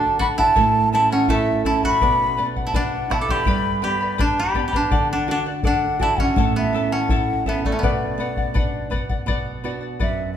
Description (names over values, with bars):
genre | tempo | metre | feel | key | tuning
andean folk, Andean ensemble | 82 BPM | 2/4 | straight | B minor | A4 = 440 Hz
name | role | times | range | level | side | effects
breathy mellow large quena | melody | 0.0-10.4 s | D5 to D6 | -21 LUFS | equal | none
koto | second line | 0.0-10.4 s | A3 to A4 | -25 LUFS | right 1 dB | none
charango | accompaniment | 0.0-10.4 s | E4 to B5 | -28 LUFS | left 5 dB | none
nylon-string guitar | accompaniment | 0.0-10.4 s | F#2 to A4 | -26 LUFS | right 5 dB | none
bombo | percussion | 0.2-10.2 s | none | -24 LUFS | left 1 dB | none
room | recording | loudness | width
moderate recital hall reverb, RT60 1.6 s | recorded in a church or concert hall | -18 LUFS | side -9 dB against mid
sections
0.0-9.3 A section; 9.3-10.4 B section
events
none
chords
0.0 D; 0.6 A; 2.0 Bm; 3.5 G; 4.9 D; 6.4 A; 7.8 Bm